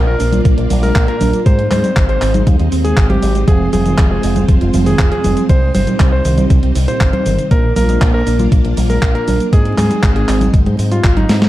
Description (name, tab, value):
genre	italo disco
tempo	119 BPM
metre	4/4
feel	straight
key	unclear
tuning	A4 = 440 Hz
part	string machine, full ensemble	sustained chords	0.0-11.5 s	G3 to D5	-21 LUFS	equal	ensemble chorus
part	warbly dusty pluck	arpeggios	0.0-11.5 s	C2 to Bb4	-22 LUFS	right 3 dB	chorus, vintage 12-bit sampler grit, tape echo
part	fingered electric bass with an envelope filter	bass	0.0-11.5 s	F1 to Ab2	-16 LUFS	equal	tube saturation
part	warm electric grand piano	melody	0.1-11.5 s	Eb4 to C5	-20 LUFS	equal	tape echo
part	clean 12-bit digital drum machine	drums	0.2-11.5 s	cabasa, congas, handclaps, hi-hat, snare drum	-19 LUFS	equal	none
part	electronic kick drum	drums	0.5-11.1 s	none	-12 LUFS	equal	none
room	light reverb, digital ambience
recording	dark, warm production, vinyl crackle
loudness	-11 LUFS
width	side -15 dB against mid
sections	0.0-11.5 A section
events	drum fill 11.3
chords	0.0 Bb; 1.5 Ab; 3.5 Fm; 5.5 Cm; 7.5 Bb; 9.5 Ab